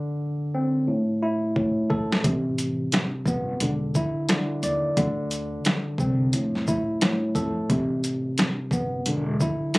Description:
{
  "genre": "hip hop, boom-bap hip-hop",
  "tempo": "88 BPM",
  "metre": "4/4",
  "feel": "swing 62% on 16ths",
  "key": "A minor",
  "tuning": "A4 = 439 Hz",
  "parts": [
    { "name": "bright tine electric piano", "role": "accompaniment", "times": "0.0-9.8 s", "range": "A2 to D5", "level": "-25 LUFS", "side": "equal", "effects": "none" },
    { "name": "boom bap sampler-style drum kit", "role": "drums", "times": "1.6-9.8 s", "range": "hi-hat, kick drum, shaker, snare drum", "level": "-24 LUFS", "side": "equal", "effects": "none" },
    { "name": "upright bass", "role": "bass", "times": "2.2-9.4 s", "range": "E1 to F2", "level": "-28 LUFS", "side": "equal", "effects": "none" }
  ],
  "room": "little or no reverb",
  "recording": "recorded on a phone in the room, club reverb",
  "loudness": "-22 LUFS",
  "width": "side -23 dB against mid",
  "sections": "0.0-2.2 A section; 2.2-9.8 B section",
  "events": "break 0.0-2.2; drum fill 1.6-2.2",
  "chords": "0.0 Csus2/D; 0.9 A5; 2.2 Am9; 3.6 Dsus2/E; 5.0 Csus2; 6.3 Fmaj7; 7.7 Am9; 9.1 Dsus2/E",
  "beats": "0.20 0.88 1.56 | 2.24 2.93 3.61 4.29 | 4.97 5.65 6.33 7.02 | 7.70 8.38 9.06 9.74"
}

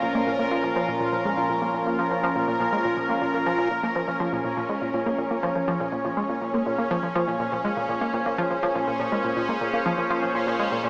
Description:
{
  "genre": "ambient, sequencer-driven space music",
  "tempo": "122 BPM",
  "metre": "4/4",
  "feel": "straight",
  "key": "Bb minor",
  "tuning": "A4 = 439 Hz",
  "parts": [
    { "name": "phased analog pad", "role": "sustained chords", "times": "0.0-10.9 s", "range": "Bb2 to Db5", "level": "-30 LUFS", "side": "equal", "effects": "phaser, chorus" },
    { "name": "analog pluck", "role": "riff", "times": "0.0-10.9 s", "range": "Bb2 to Bb3", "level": "-30 LUFS", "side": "equal", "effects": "chorus, tape echo" },
    { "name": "bubbling stepped-filter texture", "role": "texture", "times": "0.0-10.9 s", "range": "Db4 to Bb4", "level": "-29 LUFS", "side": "equal", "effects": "chorus, built-in reverb" },
    { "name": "warm sub bass", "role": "bass", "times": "3.7-10.9 s", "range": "Bb1", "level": "-58 LUFS", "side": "equal", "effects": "none" }
  ],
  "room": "wet huge ambient reverb, RT60 6.9 s",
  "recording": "small speaker sound",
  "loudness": "-25 LUFS",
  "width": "mono",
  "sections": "0.0-3.7 A section; 3.7-10.9 B section",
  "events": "fade-in on analog synth pad 3.7-10.9",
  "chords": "0.0 Bbm; 3.7 Bbm7",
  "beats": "0.27 0.76 1.25 | 1.74 2.23 2.73 3.22 | 3.71 4.20 4.69 5.19 | 5.68 6.17 6.66 7.15 | 7.64 8.14 8.63 9.12 | 9.61 10.10 10.60"
}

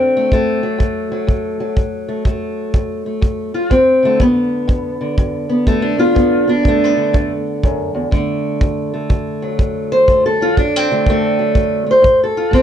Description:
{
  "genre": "acoustic country blues, solo or duo",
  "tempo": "123 BPM",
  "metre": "4/4",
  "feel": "swing 64% on 8ths",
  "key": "D mixolydian",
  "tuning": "A4 = 438 Hz",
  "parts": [
    { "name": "fingerpicked steel-string acoustic guitar", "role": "melody", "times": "0.0-12.6 s", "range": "D2 to C5", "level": "-14 LUFS", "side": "equal", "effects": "plate reverb" },
    { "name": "kick drum", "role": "drums", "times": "0.3-12.6 s", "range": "none", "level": "-17 LUFS", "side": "equal", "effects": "none" }
  ],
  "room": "moderate booth ambience, RT60 0.2 s",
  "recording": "none",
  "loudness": "-13 LUFS",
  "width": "side -9 dB against mid",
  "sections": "0.0-12.6 A section",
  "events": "none",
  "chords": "0.0 D; 4.2 G; 8.1 D; 12.0 Am",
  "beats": "| 0.32 0.80 1.29 1.77 | 2.26 2.74 3.23 3.71 | 4.20 4.69 5.18 5.67 | 6.15 6.64 7.13 7.62 | 8.11 8.60 9.09 9.59 | 10.08 10.57 11.06 11.55 | 12.04 12.53"
}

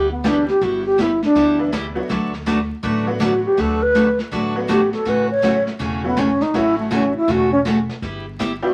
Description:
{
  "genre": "country, western swing",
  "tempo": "162 BPM",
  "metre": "4/4",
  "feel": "swing 64% on 8ths",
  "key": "D major",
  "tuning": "A4 = 440 Hz",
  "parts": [
    { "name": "alto flute", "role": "melody", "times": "0.0-8.7 s", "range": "A3 to C#5", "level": "-19 LUFS", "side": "equal", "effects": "none" },
    { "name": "picked steel-string acoustic guitar", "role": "accompaniment", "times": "0.0-8.5 s", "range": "C#3 to B4", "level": "-24 LUFS", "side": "equal", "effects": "none" },
    { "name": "upright bass", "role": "bass", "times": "0.0-8.6 s", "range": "E1 to D2", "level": "-33 LUFS", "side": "equal", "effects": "none" },
    { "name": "tack piano", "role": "accompaniment", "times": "0.2-8.7 s", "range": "E3 to G4", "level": "-29 LUFS", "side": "equal", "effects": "none" },
    { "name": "vintage brush drum kit", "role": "drums", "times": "0.2-8.7 s", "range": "brushed snare drum, hi-hat, kick drum, snare drum", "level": "-29 LUFS", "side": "equal", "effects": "none" }
  ],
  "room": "moderate club reverb, RT60 0.5 s",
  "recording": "vinyl crackle",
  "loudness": "-19 LUFS",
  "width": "mono",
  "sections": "0.0-8.7 A section",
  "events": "alto flute solo 0.0-8.7",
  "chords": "0.0 G6; 2.1 D6; 5.1 A6; 8.0 G6",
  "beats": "0.24 | 0.61 0.98 1.35 1.73 | 2.10 2.47 2.84 3.21 | 3.58 3.95 4.32 4.69 | 5.06 5.43 5.80 6.17 | 6.54 6.91 7.28 7.65 | 8.02 8.39"
}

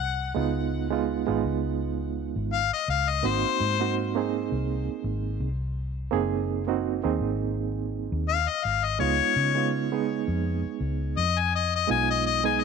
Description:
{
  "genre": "straight-eighth soul blues",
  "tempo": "83 BPM",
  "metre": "4/4",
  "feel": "swing 56% on 16ths",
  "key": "Ab mixolydian",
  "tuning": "A4 = 439 Hz",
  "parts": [
    { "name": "bright harmonica", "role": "melody", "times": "0.0-4.0, 8.3-12.6 s", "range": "C5 to Ab5", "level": "-26 LUFS", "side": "left 12 dB", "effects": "overdrive, tape echo" },
    { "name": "vintage muted fingered electric bass", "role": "bass", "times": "0.0-12.6 s", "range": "Gb1 to Db3", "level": "-29 LUFS", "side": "left 1 dB", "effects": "none" },
    { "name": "bright reed electric piano", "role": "accompaniment", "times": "0.3-12.6 s", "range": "Ab3 to Ab4", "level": "-28 LUFS", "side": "right 13 dB", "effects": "fast tremolo" }
  ],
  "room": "light reverb, small room ambience",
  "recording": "1960s-style stereo with parts hard left and right",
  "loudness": "-24 LUFS",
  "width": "side -5 dB against mid",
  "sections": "0.0-12.6 A section",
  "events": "harmonica solo 0.0-12.6",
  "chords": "0.4 Db9; 3.2 Ab9; 9.0 Db9",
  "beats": "| 0.36 1.08 1.80 2.52 | 3.24 3.96 4.68 5.40 | 6.12 6.84 7.56 8.28 | 9.00 9.72 10.45 11.17 | 11.89 12.61"
}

